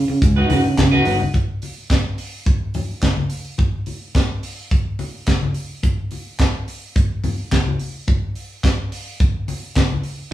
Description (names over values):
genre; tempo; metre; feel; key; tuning
disco; 107 BPM; 4/4; straight; unclear; A4 = 440 Hz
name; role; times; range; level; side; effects
fingered electric bass; bass; 0.0-1.2 s; G1 to C#3; -18 LUFS; right 1 dB; none
electric guitar at the edge of break-up; accompaniment; 0.1-1.2 s; D#4 to B4; -20 LUFS; right 1 dB; none
tight funk drum kit; drums; 0.2-10.2 s; handclaps, hi-hat, kick drum, snare drum; -19 LUFS; equal; none
congas; percussion; 0.2-10.0 s; none; -25 LUFS; left 2 dB; none
room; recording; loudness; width
wet studio reverb, RT60 0.6 s; band playing live in one room, studio reverb; -18 LUFS; side -14 dB against mid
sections
0.0-1.3 A section; 1.3-10.3 B section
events
none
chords
0.0 C#9sus4; 1.3 N.C.